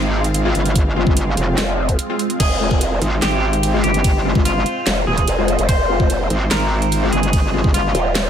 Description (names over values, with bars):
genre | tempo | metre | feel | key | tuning
heavy wobble dubstep | 146 BPM | 4/4 | half-time | F minor | A4 = 439 Hz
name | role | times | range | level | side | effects
lush unison pad | sustained chords | 0.0-8.3 s | Ab3 to F5 | -26 LUFS | right 1 dB | chorus, phaser, sidechain pumping
metallic wobble bass | bass | 0.0-7.9 s | Eb1 to Ab1 | -18 LUFS | equal | chorus, overdrive
dubstep drum kit | drums | 0.2-8.2 s | crash cymbal, handclaps, hi-hat, ride cymbal, snare drum | -24 LUFS | right 1 dB | none
orchestra-hit-like synth stab | stabs | 0.5-7.7 s | Ab3 to F4 | -24 LUFS | left 5 dB | built-in reverb
electronic kick drum | drums | 0.8-7.7 s | none | -17 LUFS | equal | none
growl bass | bass | 1.6-8.3 s | Eb1 to F1 | -19 LUFS | equal | chorus, overdrive
clean electric guitar | melody | 2.4-8.3 s | F4 to C5 | -22 LUFS | right 1 dB | lush chorus, ping-pong delay
room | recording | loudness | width
little or no reverb | none | -15 LUFS | side -9 dB against mid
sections
0.0-8.3 A section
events
none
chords
0.0 Fm